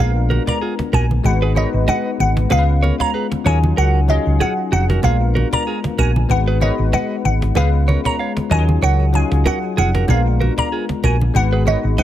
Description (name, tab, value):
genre	afrobeats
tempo	95 BPM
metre	4/4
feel	swing 55% on 16ths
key	Eb minor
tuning	A4 = 445 Hz
part	glassy wavetable pluck	melody	0.0-12.0 s	Eb5 to Bb5	-22 LUFS	equal	chorus, tape echo
part	bell-like tine electric piano	accompaniment	0.0-12.0 s	Gb3 to Cb5	-23 LUFS	left 6 dB	analog chorus
part	direct-recorded clean electric guitar	riff	0.0-12.0 s	Eb4 to F5	-25 LUFS	right 5 dB	tape echo
part	hollow-body short-scale fingered electric bass	bass	0.0-12.0 s	F1 to Eb2	-16 LUFS	equal	none
part	cajon	drums	0.3-12.0 s	none	-26 LUFS	equal	none
part	congas	percussion	0.3-12.0 s	none	-24 LUFS	right 2 dB	none
room	small room ambience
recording	none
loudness	-14 LUFS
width	side -12 dB against mid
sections	0.0-12.0 A section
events	none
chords	0.0 Bb7b9; 1.2 Abm7; 2.5 Db7; 3.5 Ebm11; 5.0 Bb7b9; 6.3 Abm7; 7.6 Db7; 8.5 Ebm11; 10.1 Bb7b9; 11.4 Abm7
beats	0.62 1.25 1.88 | 2.51 3.14 3.77 4.41 | 5.04 5.67 6.30 6.93 | 7.56 8.20 8.83 9.46 | 10.09 10.72 11.35 11.98